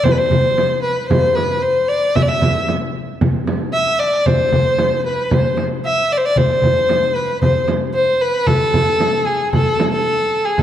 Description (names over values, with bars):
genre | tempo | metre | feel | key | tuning
Arabic maqam ensemble | 114 BPM | 4/4 | straight | A maqam nahawand | A4 = 438 Hz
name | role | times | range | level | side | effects
rich violin | melody | 0.0-10.6 s | G#4 to E5 | -16 LUFS | left 1 dB | none
darbuka | percussion | 0.0-10.6 s | none | -21 LUFS | left 2 dB | none
frame drum | percussion | 0.1-10.6 s | none | -20 LUFS | right 3 dB | none
room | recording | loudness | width
wet scoring stage reverb, RT60 1.8 s | dark, warm production | -14 LUFS | side -10 dB against mid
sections
0.0-10.6 A section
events
drum fill 3.7-4.3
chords
none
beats
| 0.05 0.58 1.11 1.64 | 2.16 2.69 3.22 3.74 | 4.27 4.80 5.32 5.85 | 6.38 6.90 7.43 7.95 | 8.48 9.01 9.53 10.06 | 10.58